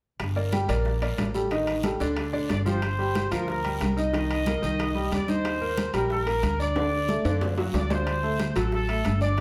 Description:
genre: latin, salsa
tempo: 183 BPM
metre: 4/4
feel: straight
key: G harmonic minor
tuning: A4 = 438 Hz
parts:
  - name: upright bass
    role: bass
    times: 0.2-9.4 s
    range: G1 to F#2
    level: -31 LUFS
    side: equal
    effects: none
  - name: bongos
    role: percussion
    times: 0.2-9.4 s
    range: none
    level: -42 LUFS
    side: equal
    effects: none
  - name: congas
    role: percussion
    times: 0.2-9.4 s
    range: none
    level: -35 LUFS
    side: equal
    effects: none
  - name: guiro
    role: percussion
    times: 0.2-9.4 s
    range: none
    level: -46 LUFS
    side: equal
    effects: none
  - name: timbales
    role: percussion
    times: 0.2-9.4 s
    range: none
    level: -38 LUFS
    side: equal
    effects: none
  - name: bright baby grand piano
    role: accompaniment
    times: 0.4-9.4 s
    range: D3 to G5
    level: -30 LUFS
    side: equal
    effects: none
  - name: clear trumpet section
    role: melody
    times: 2.5-9.4 s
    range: A4 to Eb5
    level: -32 LUFS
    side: equal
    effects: none
room: wet large studio reverb, RT60 0.9 s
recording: heard from further back in the room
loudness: -26 LUFS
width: mono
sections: 0.2-2.8 A section; 2.8-9.4 B section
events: drum fill 6.8-8.1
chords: 0.2 Gm; 0.9 Bb; 1.5 Ebmaj7#11/A; 2.2 G7sus4; 2.8 Gm7; 4.1 Cm7; 5.4 Ebmaj7; 6.8 D

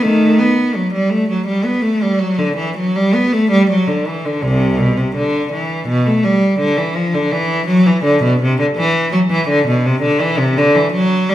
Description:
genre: classical, baroque-style suite movement for unaccompanied cello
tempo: 83 BPM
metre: 4/4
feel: rubato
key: E minor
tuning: A4 = 439 Hz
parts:
  - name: rich cello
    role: solo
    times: 0.0-11.3 s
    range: C2 to B3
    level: -13 LUFS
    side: equal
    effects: none
room: wet stone room reverb, RT60 1.4 s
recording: heard from further back in the room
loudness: -13 LUFS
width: side -13 dB against mid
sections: 0.0-11.3 A section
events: none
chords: none

